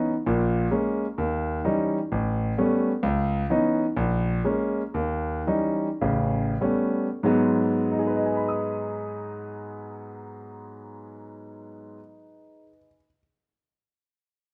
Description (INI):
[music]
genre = solo jazz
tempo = 91-130 BPM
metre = 4/4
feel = swing 68% on 8ths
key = G# minor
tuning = A4 = 441 Hz
[part]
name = clear concert grand piano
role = solo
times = 0.0-13.2 s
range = A1 to D#6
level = -26 LUFS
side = equal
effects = none
[sound]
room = moderate large studio reverb, RT60 1.3 s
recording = none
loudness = -25 LUFS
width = mono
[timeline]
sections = 0.0-7.2 A section; 7.2-12.5 B section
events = slowing down 3.0-7.2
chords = 0.3 A#m7; 1.2 D#7b9; 2.1 A9; 3.0 C#m9; 4.0 A#m7; 4.9 D#7b9; 6.0 A9; 7.2 G#m7